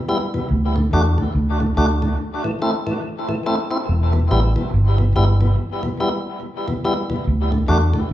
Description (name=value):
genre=roots reggae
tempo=71 BPM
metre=4/4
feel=swing 59% on 16ths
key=E minor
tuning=A4 = 440 Hz
part: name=tonewheel organ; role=accompaniment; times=0.1-8.0 s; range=D2 to F#4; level=-21 LUFS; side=equal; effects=overdrive, dub echo
part: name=vintage muted fingered electric bass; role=bass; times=0.5-7.9 s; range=E1 to E2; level=-17 LUFS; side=equal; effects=none
room=wet large studio reverb, RT60 0.9 s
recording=band playing live in one room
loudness=-17 LUFS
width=side -13 dB against mid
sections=0.0-8.1 A section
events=none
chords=0.0 Em; 0.5 D; 2.2 Am; 3.9 Em; 7.3 D